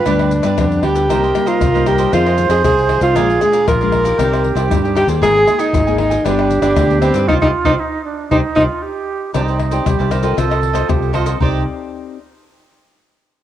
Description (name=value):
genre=samba and choro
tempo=116 BPM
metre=4/4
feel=straight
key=C minor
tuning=A4 = 441 Hz
part: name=breathy alto saxophone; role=melody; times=0.0-8.6 s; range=C4 to Bb4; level=-16 LUFS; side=equal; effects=cassette tape
part: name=wooden flute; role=second line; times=0.0-11.6 s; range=D4 to C5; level=-20 LUFS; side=right 7 dB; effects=cassette tape
part: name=cavaquinho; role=accompaniment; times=0.0-11.6 s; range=D4 to Ab5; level=-24 LUFS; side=right 8 dB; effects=cassette tape
part: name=nylon-string guitar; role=accompaniment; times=0.0-12.2 s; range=G2 to Eb5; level=-23 LUFS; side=left 9 dB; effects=cassette tape
part: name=overdriven fingered electric bass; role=bass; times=0.1-11.7 s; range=G1 to G2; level=-19 LUFS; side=equal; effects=none
part: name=maracas, surdo, pandeiro and tamborim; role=percussion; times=0.1-11.5 s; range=none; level=-22 LUFS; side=left 4 dB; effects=none
room=moderate spring reverb, RT60 2.5 s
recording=home recording on cassette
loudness=-13 LUFS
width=side -11 dB against mid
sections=0.0-9.3 A section; 9.3-11.4 B section; 11.4-13.4 C section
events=band accent 7.3-9.3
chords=0.0 G; 1.1 Cm7; 2.1 Fm7; 3.2 Bb7; 4.2 Cmadd9; 5.2 Absus2; 6.3 G; 7.3 Cmadd9; 10.4 F7/C; 11.4 Cmadd9